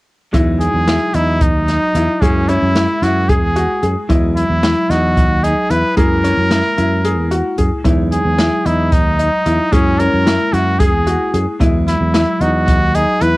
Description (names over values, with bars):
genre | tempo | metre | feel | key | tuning
progressive instrumental, band music in an uneven meter | 224 BPM (eighths) | 7/8 | straight | E lydian | A4 = 440 Hz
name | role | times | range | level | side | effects
vintage hollow-body jazz guitar | accompaniment | 0.3-13.4 s | F#3 to D#5 | -22 LUFS | equal | cassette tape
bright baby grand piano | arpeggios | 0.3-13.4 s | C#4 to G#4 | -19 LUFS | left 2 dB | cassette tape
sustaining fretless electric bass | bass | 0.3-13.3 s | D#2 to F#2 | -17 LUFS | equal | none
open jazz drum kit | drums | 0.3-13.3 s | hi-hat, kick drum, snare drum | -17 LUFS | equal | cassette tape
bright trumpet | melody | 0.6-13.4 s | C#4 to B4 | -18 LUFS | equal | cassette tape
room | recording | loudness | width
moderate booth ambience, RT60 0.2 s | home recording on cassette | -12 LUFS | side -21 dB against mid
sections
0.3-13.4 A section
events
none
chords
0.3 Emaj7; 2.2 F#9; 4.1 Emaj7; 6.0 F#9; 7.8 Emaj7; 9.7 F#9; 11.6 Emaj9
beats
| 0.34 0.61 0.87 1.14 1.41 1.68 1.95 | 2.22 2.48 2.75 3.02 3.29 3.56 3.83 | 4.09 4.36 4.63 4.90 5.17 5.44 5.70 | 5.97 6.24 6.51 6.78 7.04 7.31 7.58 | 7.85 8.12 8.39 8.65 8.92 9.19 9.46 | 9.73 9.99 10.26 10.53 10.80 11.07 11.34 | 11.60 11.87 12.14 12.41 12.68 12.94 13.21